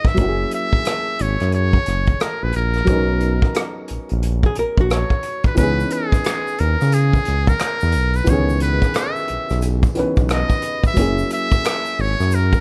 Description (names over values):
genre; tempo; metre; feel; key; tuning
R&B, neo-soul; 89 BPM; 4/4; swing 62% on 16ths; C# dorian; A4 = 441 Hz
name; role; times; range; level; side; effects
trumpet with metal mute; melody; 0.0-12.6 s; G#4 to E5; -25 LUFS; equal; none
warm upright piano; accompaniment; 0.0-12.6 s; D#3 to B4; -27 LUFS; equal; none
unplugged drum kit; drums; 0.0-12.6 s; hi-hat, kick drum, rim click; -21 LUFS; equal; none
smooth synth bass; bass; 0.2-12.6 s; F#1 to C#3; -22 LUFS; equal; none
archtop guitar, miked and amplified; second line; 4.5-5.6 s; F#4 to A#4; -25 LUFS; equal; none
tube shaker and finger snaps; percussion; 5.6-12.6 s; none; -38 LUFS; equal; none
room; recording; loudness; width
small room ambience; dark, warm production; -19 LUFS; mono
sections
0.0-12.6 A section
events
none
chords
0.2 F#9; 2.9 Bmaj9; 5.6 C#m9; 11.0 F#9